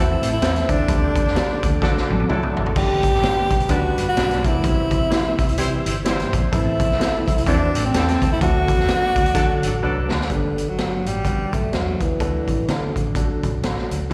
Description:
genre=uptempo 1960s-style soul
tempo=127 BPM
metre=4/4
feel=swing 59% on 8ths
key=G major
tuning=A4 = 440 Hz
part: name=breathy tenor saxophone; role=melody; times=0.0-14.1 s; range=D3 to G4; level=-24 LUFS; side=equal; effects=slapback echo
part: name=warm horn section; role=second line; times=0.0-10.3 s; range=E3 to C5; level=-30 LUFS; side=equal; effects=slapback echo
part: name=warm concert grand piano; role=accompaniment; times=0.0-14.1 s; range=D3 to C5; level=-30 LUFS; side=equal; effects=slapback echo
part: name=tonewheel organ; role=sustained chords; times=0.0-10.3 s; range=A4 to E6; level=-37 LUFS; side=equal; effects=none
part: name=vintage muted fingered electric bass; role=bass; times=0.0-14.1 s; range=G1 to D3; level=-27 LUFS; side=equal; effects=none
part: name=raw garage drum kit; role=drums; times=0.2-14.1 s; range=crash cymbal, hi-hat, kick drum, snare drum, toms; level=-24 LUFS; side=equal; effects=none
room=light reverb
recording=live gig heard through the venue's PA, recital hall reverb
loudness=-20 LUFS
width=mono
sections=0.0-10.3 A section; 10.3-14.1 B section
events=drum fill 1.8-2.8, 9.8-10.3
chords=0.0 Am; 0.9 Dsus4; 1.8 D; 2.8 G; 4.6 C; 6.5 Am; 8.4 D; 10.3 G; 12.2 D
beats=0.41 | 0.88 1.35 1.82 2.29 | 2.76 3.23 3.70 4.17 | 4.65 5.12 5.59 6.06 | 6.53 7.00 7.47 7.94 | 8.41 8.88 9.36 9.83 | 10.30 10.78 11.25 11.73 | 12.20 12.68 13.15 13.63 | 14.11

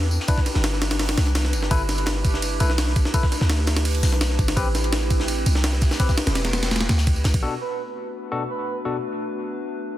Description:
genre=drum and bass, jungle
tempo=168 BPM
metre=4/4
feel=straight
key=unclear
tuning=A4 = 441 Hz
part: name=warbly tape-like pad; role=sustained chords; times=0.0-10.0 s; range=A3 to B4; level=-30 LUFS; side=equal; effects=chorus, built-in reverb
part: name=warm 808-style bass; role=bass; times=0.0-7.4 s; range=E1 to E2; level=-22 LUFS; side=equal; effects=none
part: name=breakbeat sampler-style drum kit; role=drums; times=0.0-7.4 s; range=hi-hat, kick drum, ride cymbal, snare drum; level=-23 LUFS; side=equal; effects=none
part: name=tight metal drum kit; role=drums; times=0.1-7.3 s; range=hi-hat, snare drum, tambourine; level=-33 LUFS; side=left 2 dB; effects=high-pass filter on hats, high-pass filter on snare, high-pass filter on perc, high-pass filter on room
part: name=barky tine electric piano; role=stabs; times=0.3-9.0 s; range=B2 to B4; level=-31 LUFS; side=left 3 dB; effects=dub echo
part: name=breathy flute-like synth lead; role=melody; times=7.6-8.8 s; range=B4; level=-32 LUFS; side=right 6 dB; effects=wide subtle chorus, cassette tape, dub echo
room=light reverb, small room ambience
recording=dense, heavily limited modern master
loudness=-20 LUFS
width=side -13 dB against mid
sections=0.0-7.4 A section; 7.4-10.0 B section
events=none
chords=0.0 Cmaj7; 1.7 G6; 4.6 Am9; 7.4 Bm7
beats=| 0.28 0.64 1.00 1.36 | 1.71 2.07 2.43 2.78 | 3.14 3.50 3.86 4.21 | 4.57 4.93 5.28 5.64 | 6.00 6.36 6.71 7.07 | 7.43 7.78 8.14 8.50 | 8.86 9.21 9.57 9.93

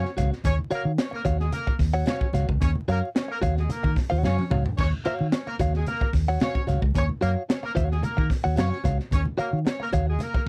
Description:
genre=funk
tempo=111 BPM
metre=4/4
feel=straight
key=Eb minor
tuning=A4 = 440 Hz
part: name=warm horn section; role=second line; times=0.0-10.4 s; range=Ab3 to Db5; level=-34 LUFS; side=equal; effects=none
part: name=direct-recorded clean electric guitar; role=accompaniment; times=0.0-10.4 s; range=Gb4 to Gb5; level=-31 LUFS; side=equal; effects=none
part: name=vintage muted fingered electric bass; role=bass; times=0.0-10.5 s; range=Db2 to Eb3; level=-27 LUFS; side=equal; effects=none
part: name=congas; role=percussion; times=0.0-10.3 s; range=none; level=-37 LUFS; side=equal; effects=none
part: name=crisp fusion drum kit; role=drums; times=0.1-10.5 s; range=crash cymbal, hi-hat, kick drum, snare drum, toms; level=-29 LUFS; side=equal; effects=none
room=little or no reverb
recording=vinyl crackle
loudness=-25 LUFS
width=mono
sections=0.0-10.5 A section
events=drum fill 4.2-4.8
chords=0.0 Ebm9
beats=| 0.44 0.99 1.53 2.07 | 2.61 3.15 3.70 4.24 | 4.78 5.33 5.87 6.41 | 6.95 7.50 8.04 8.58 | 9.12 9.66 10.21

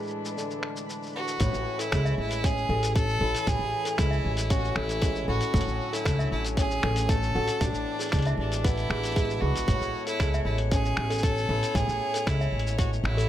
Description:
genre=folktronica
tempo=116 BPM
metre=4/4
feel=straight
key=A major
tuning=A4 = 439 Hz
part: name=warm string quartet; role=sustained chords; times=0.0-13.3 s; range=A2 to C#5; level=-38 LUFS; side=left 3 dB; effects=none
part: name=fingerpicked old ladder-braced acoustic guitar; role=arpeggios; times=0.0-13.3 s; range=A2 to F#4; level=-34 LUFS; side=equal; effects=none
part: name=lo-fi sampler-style drum kit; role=drums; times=0.0-13.3 s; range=finger snaps, hi-hat, shaker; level=-34 LUFS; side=left 1 dB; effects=none
part: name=twinkling granular texture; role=texture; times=0.0-1.4 s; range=B4 to B5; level=-46 LUFS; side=right 1 dB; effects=built-in reverb
part: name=rich violin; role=melody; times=1.2-13.3 s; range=D4 to A4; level=-31 LUFS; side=right 1 dB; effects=ping-pong delay
part: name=upright bass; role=bass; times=1.4-13.3 s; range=A1 to C#2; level=-28 LUFS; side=equal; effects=none
part: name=electronic kick drum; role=drums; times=1.4-12.9 s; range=none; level=-27 LUFS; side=equal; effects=overdrive
part: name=toy piano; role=second line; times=1.8-13.2 s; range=G#4 to E5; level=-36 LUFS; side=left 1 dB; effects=digital delay
room=light reverb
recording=none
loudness=-24 LUFS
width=side -12 dB against mid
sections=0.0-1.4 A section; 1.4-13.3 B section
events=none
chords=0.0 E7/A; 1.4 Amaj7; 5.5 Dmaj7/A; 7.6 E7/A; 9.7 Amaj7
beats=0.37 0.89 | 1.41 1.92 2.44 2.96 | 3.47 3.99 4.51 5.03 | 5.54 6.06 6.58 7.09 | 7.61 8.13 8.65 9.16 | 9.68 10.20 10.71 11.23 | 11.75 12.27 12.78

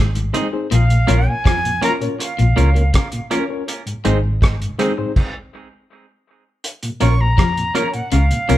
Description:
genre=roots reggae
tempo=81 BPM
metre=4/4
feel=straight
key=Bb minor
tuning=A4 = 440 Hz
part: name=clean electric guitar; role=riff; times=0.0-8.6 s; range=Ab2 to F3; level=-26 LUFS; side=left 6 dB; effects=tape echo
part: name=vintage muted fingered electric bass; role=bass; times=0.0-8.6 s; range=Ab1 to F2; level=-16 LUFS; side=equal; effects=none
part: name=mellow tonewheel organ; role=accompaniment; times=0.2-8.6 s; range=Ab2 to Db4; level=-26 LUFS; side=equal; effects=overdrive, chorus vibrato, slow rotary speaker
part: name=cloth-damped thuddy drum kit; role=drums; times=0.2-8.6 s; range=crash cymbal, hi-hat, kick drum, rim click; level=-19 LUFS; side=equal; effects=tape echo
part: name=semi-hollow electric guitar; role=accompaniment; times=0.3-8.6 s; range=Ab3 to Bb4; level=-24 LUFS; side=right 4 dB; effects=tape echo
part: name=reed electric piano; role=stabs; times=0.3-8.6 s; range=C4 to Db5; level=-24 LUFS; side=left 4 dB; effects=fast tremolo
part: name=jazz flute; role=melody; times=0.7-8.6 s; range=F5 to Db6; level=-22 LUFS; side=equal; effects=none
room=moderate large studio reverb, RT60 0.8 s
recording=band playing live in one room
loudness=-15 LUFS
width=side -14 dB against mid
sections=0.0-6.6 A section; 6.6-8.6 B section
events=stop 5.2-6.6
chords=0.0 Ab; 0.7 Bbm; 3.7 Ab; 6.6 Bbm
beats=| 0.71 1.46 2.20 2.94 | 3.68 4.42 5.16 5.90 | 6.64 7.38 8.12

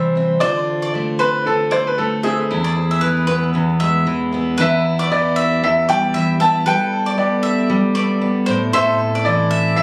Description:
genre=acoustic pop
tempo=116 BPM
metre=4/4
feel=swing 60% on 16ths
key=unclear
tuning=A4 = 440 Hz
part: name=bright upright piano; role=melody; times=0.0-9.8 s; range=G#4 to A5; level=-21 LUFS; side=equal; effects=digital delay
part: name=fingerpicked steel-string acoustic guitar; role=accompaniment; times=0.0-9.8 s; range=E2 to A4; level=-21 LUFS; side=equal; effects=none
part: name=bowl-back mandolin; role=arpeggios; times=0.0-9.8 s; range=B4 to E5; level=-26 LUFS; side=equal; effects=digital delay
part: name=glass harmonica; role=sustained chords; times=4.6-9.8 s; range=B3 to E5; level=-29 LUFS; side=equal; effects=none
room=light reverb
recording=recorded on a phone in the room, club reverb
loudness=-17 LUFS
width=mono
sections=0.0-4.6 A section; 4.6-9.8 B section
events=none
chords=0.4 Dm7; 2.5 E; 4.6 Em; 6.7 Gadd9; 8.5 Am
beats=| 0.42 0.94 1.47 1.99 | 2.51 3.03 3.55 4.07 | 4.59 5.11 5.62 6.14 | 6.66 7.18 7.70 8.22 | 8.74 9.26 9.78

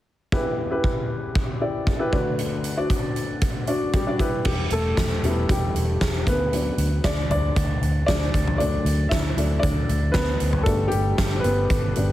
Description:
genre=piano-driven pop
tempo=116 BPM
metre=4/4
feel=straight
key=E minor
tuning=A4 = 440 Hz
part: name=warm baby grand piano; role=accompaniment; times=0.3-12.1 s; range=D2 to E5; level=-25 LUFS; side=left 1 dB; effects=plate reverb
part: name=huge arena drum kit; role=drums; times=0.3-12.1 s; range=crash cymbal, hi-hat, kick drum, snare drum, toms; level=-24 LUFS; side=equal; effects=none
part: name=vintage muted fingered electric bass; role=bass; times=4.5-12.1 s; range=E1 to D2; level=-24 LUFS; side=equal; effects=none
room=light reverb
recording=heavily compressed radio sound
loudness=-20 LUFS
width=side -14 dB against mid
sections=0.3-4.5 A section; 4.5-12.1 B section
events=grand piano solo 4.5-12.1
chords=0.3 Em; 2.1 Bm/D; 4.2 Em; 6.3 Bm/D; 8.3 D; 10.7 G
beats=| 0.31 0.83 1.35 1.86 | 2.38 2.90 3.42 3.94 | 4.45 4.97 5.49 6.01 | 6.52 7.04 7.56 8.08 | 8.59 9.11 9.63 10.15 | 10.66 11.18 11.70

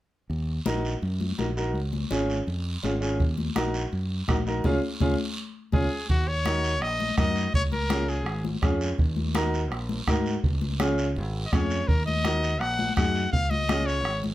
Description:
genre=latin, cumbia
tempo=166 BPM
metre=4/4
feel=straight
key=Eb minor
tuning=A4 = 444 Hz
part: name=fingered electric bass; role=bass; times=0.3-14.3 s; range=Ab1 to Ab2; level=-29 LUFS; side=equal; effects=none
part: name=congas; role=percussion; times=0.3-14.3 s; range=none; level=-32 LUFS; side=left 5 dB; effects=none
part: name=guiro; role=percussion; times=0.3-14.3 s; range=none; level=-39 LUFS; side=right 3 dB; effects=none
part: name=clear upright piano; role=accompaniment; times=0.7-13.9 s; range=Db4 to Bb4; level=-29 LUFS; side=right 1 dB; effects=none
part: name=bombo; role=percussion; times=3.2-14.2 s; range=none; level=-27 LUFS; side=right 1 dB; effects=none
part: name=clear trumpet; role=melody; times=5.7-8.4, 11.5-14.2 s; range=Gb4 to Gb5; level=-28 LUFS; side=left 1 dB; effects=none
room=moderate studio reverb, RT60 0.6 s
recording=none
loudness=-24 LUFS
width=side -15 dB against mid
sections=0.3-6.1 A section; 6.1-14.3 B section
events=band accent 4.6-6.1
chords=0.3 Ebm; 1.7 Db; 3.2 Ebm; 4.6 Db; 6.1 Ebm; 7.5 Db; 9.0 Ebm; 10.4 Db; 11.9 Ebm; 13.3 Db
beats=| 0.30 0.66 1.02 1.39 | 1.75 2.11 2.47 2.84 | 3.20 3.56 3.92 4.29 | 4.65 5.01 5.37 5.73 | 6.09 6.46 6.82 7.18 | 7.54 7.90 8.27 8.63 | 8.99 9.35 9.71 10.07 | 10.44 10.80 11.16 11.52 | 11.88 12.25 12.61 12.97 | 13.33 13.70 14.06

